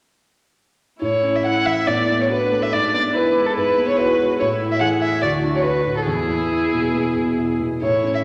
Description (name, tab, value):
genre	quick classical-period movement for piano quartet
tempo	141 BPM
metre	4/4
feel	rubato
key	unclear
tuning	A4 = 440 Hz
part	muted violin	melody	1.0-8.2 s	G#4 to F#5	-22 LUFS	equal	none
part	muted viola	accompaniment	1.0-8.2 s	B3 to G#4	-28 LUFS	equal	none
part	warm concert grand piano	accompaniment	1.0-8.2 s	D2 to F#4	-24 LUFS	equal	none
room	wet concert hall reverb, RT60 1.9 s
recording	none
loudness	-19 LUFS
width	mono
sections	1.0-8.2 A section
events	none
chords	1.0 A; 1.9 Bm7/A; 2.7 E7/G#; 4.4 A5; 5.2 D; 6.1 E